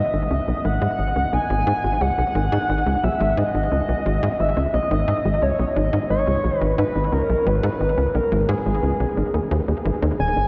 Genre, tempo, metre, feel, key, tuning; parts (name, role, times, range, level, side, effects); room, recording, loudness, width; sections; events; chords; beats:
ambient; 88 BPM; 4/4; straight; G# minor; A4 = 438 Hz
pulse-width lead; melody; 0.0-10.5 s; G#4 to G#5; -25 LUFS; equal; chorus, analog delay
tight sequencer bass; riff; 0.0-10.5 s; D#1 to G#2; -23 LUFS; equal; analog chorus, vintage 12-bit sampler grit, analog delay
wet cathedral reverb, RT60 6.8 s; dreamy mix soaked in reverb; -21 LUFS; mono
0.0-10.2 A section
0.0 G#m
0.65 1.33 | 2.01 2.69 3.37 4.06 | 4.74 5.42 6.10 6.78 | 7.46 8.15 8.83 9.51 | 10.19